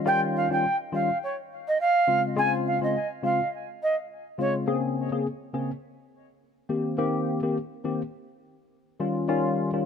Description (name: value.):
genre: afrobeats.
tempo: 104 BPM.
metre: 4/4.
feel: swing 55% on 16ths.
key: unclear.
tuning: A4 = 440 Hz.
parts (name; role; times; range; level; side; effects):
tine electric piano; accompaniment; 0.0-9.9 s; Db3 to Ab4; -26 LUFS; left 3 dB; analog chorus.
jazz flute; melody; 0.1-4.5 s; Db5 to Ab5; -25 LUFS; right 2 dB; ping-pong delay.
room: light reverb, studio ambience.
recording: none.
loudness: -24 LUFS.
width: side -7 dB against mid.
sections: 0.0-9.9 A section.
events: none.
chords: 0.0 Eb9; 2.1 Dbmaj7; 4.7 Bbm9; 6.7 Cm7; 9.0 Eb9.